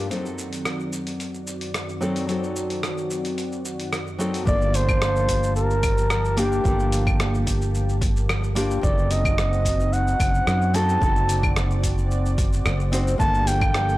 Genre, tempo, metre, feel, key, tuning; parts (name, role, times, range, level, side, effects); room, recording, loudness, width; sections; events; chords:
sunset chillout; 110 BPM; 4/4; straight; G minor; A4 = 439 Hz
nylon-string guitar; accompaniment; 0.0-14.0 s; F#3 to C5; -28 LUFS; left 1 dB; auto-pan, tape echo
lush unison pad; sustained chords; 0.0-14.0 s; F#2 to A5; -32 LUFS; right 1 dB; chorus
dusty soul sampler-style drum kit; drums; 0.1-14.0 s; claves, hi-hat, rim click, shaker; -29 LUFS; equal
mellow flugelhorn; melody; 4.5-14.0 s; G4 to A5; -25 LUFS; equal; tape echo
fretless electric bass; bass; 4.5-14.0 s; F#1 to F#2; -23 LUFS; equal
electronic kick drum; drums; 4.5-13.7 s; -25 LUFS; equal; overdrive
digital ambience; dry, gritty hardware recording; -20 LUFS; side -17 dB against mid
0.0-4.5 A section; 4.5-14.0 B section
filter sweep on analog synth pad 0.0-4.5
0.1 D7b9/F#; 4.5 Gm9; 8.8 D7b9/F#; 13.2 Gm9